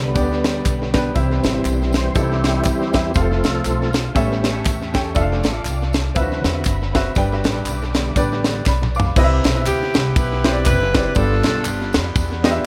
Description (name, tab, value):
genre	uptempo gospel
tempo	120 BPM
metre	4/4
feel	swing 57% on 8ths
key	C major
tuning	A4 = 440 Hz
part	muted studio string section	sustained chords	0.0-9.1 s	B4 to D6	-37 LUFS	equal	none
part	tonewheel organ	sustained chords	0.0-8.6 s	C3 to C5	-26 LUFS	equal	fast rotary speaker, chorus vibrato
part	upright bass	bass	0.0-12.6 s	F1 to F2	-25 LUFS	equal	none
part	clear baby grand piano	accompaniment	0.1-12.7 s	G2 to D6	-25 LUFS	equal	tape echo
part	tight funk drum kit	drums	0.2-12.5 s	crash cymbal, hi-hat, kick drum, ride cymbal, snare drum, toms	-23 LUFS	equal	tape echo
part	tambourine and handclaps	percussion	0.2-12.5 s	none	-38 LUFS	equal	tape echo
part	bright saxophone section	melody	9.7-12.7 s	B3 to B4	-24 LUFS	equal	tape echo
room	light reverb, small room ambience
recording	echo-heavy mix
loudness	-19 LUFS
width	mono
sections	0.0-9.2 A section; 9.2-12.7 B section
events	tonewheel organ solo 0.0-9.2; drum fill 8.7-9.2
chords	0.0 G; 1.2 C; 3.2 F; 4.2 A7; 5.2 Dm/F; 6.2 D13; 7.2 G; 9.2 Cmaj7; 11.2 G7